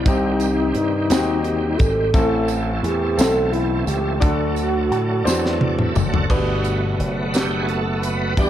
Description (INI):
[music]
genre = slow gospel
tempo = 58 BPM (dotted quarters)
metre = 6/8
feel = straight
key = G major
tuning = A4 = 443 Hz
[part]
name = mellow hollow wooden-headed alto flute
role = melody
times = 0.0-5.6 s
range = Eb4 to A4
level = -22 LUFS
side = equal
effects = none
[part]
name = bright baby grand piano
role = accompaniment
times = 0.0-8.5 s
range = A2 to C5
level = -24 LUFS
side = left 1 dB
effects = none
[part]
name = bright tonewheel organ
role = sustained chords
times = 0.0-8.5 s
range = D3 to F#5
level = -26 LUFS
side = right 3 dB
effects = slow rotary speaker, chorus vibrato
[part]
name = slap bass with an envelope filter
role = bass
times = 0.0-8.5 s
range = F#1 to A2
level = -23 LUFS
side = equal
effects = none
[part]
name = tight funk drum kit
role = drums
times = 0.1-8.5 s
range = crash cymbal, hi-hat, kick drum, snare drum, toms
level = -20 LUFS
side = equal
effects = none
[part]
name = tambourine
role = percussion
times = 0.1-8.5 s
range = none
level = -34 LUFS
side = right 12 dB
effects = none
[sound]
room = light reverb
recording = dark, warm production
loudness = -17 LUFS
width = side -11 dB against mid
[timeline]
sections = 0.0-6.3 A section; 6.3-8.5 B section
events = drum fill 5.3-6.3; tonewheel organ fill 5.3-6.3; tonewheel organ solo 6.3-8.5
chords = 0.1 Cm; 2.1 Am; 4.2 D; 6.3 Gmaj7